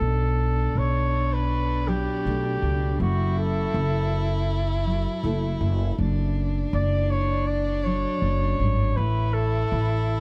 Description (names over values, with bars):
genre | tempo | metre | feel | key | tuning
folk | 80 BPM | 4/4 | straight | B minor | A4 = 440 Hz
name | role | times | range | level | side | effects
warm flugelhorn | melody | 0.0-10.2 s | F#4 to D5 | -31 LUFS | equal | dub echo
warm violin | second line | 0.0-10.2 s | D4 to E4 | -34 LUFS | equal | none
fingerpicked steel-string acoustic guitar | accompaniment | 0.0-10.2 s | F#2 to A4 | -32 LUFS | equal | none
upright bass | bass | 0.0-10.2 s | F#1 to C#2 | -27 LUFS | equal | none
room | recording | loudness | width
small room ambience | echo-heavy mix | -24 LUFS | mono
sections
0.0-10.2 A section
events
none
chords
0.0 Bm7; 3.0 F#m7; 6.0 Dmaj7/F#; 9.0 A5